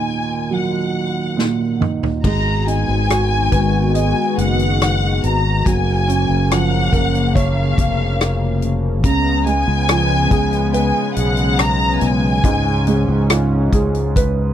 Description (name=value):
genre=pop ballad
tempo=70 BPM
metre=4/4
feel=straight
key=unclear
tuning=A4 = 438 Hz
part: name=warm studio violin section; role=melody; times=0.0-13.3 s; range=E#5 to A#5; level=-22 LUFS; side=left 1 dB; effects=none
part: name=felt-muted upright piano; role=accompaniment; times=0.0-14.5 s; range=D#2 to D#5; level=-21 LUFS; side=right 5 dB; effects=none
part: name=natural country drum kit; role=drums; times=1.4-14.4 s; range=crash cymbal, hi-hat, kick drum, rim click, snare drum, toms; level=-19 LUFS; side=left 1 dB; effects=none
part: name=warm analog pad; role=sustained chords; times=2.2-14.5 s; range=C#3 to F#4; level=-22 LUFS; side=left 2 dB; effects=chorus, tremolo
part: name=fingered electric bass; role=bass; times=2.2-14.5 s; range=E#1 to C#2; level=-18 LUFS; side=left 1 dB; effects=none
room=small room ambience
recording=dry, close 1970s-style studio recording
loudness=-14 LUFS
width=side -10 dB against mid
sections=0.0-2.2 A section; 2.2-14.5 B section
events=drum fill 1.4-2.2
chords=0.0 D#m; 2.2 G#m7; 5.7 F#maj7; 9.0 C#7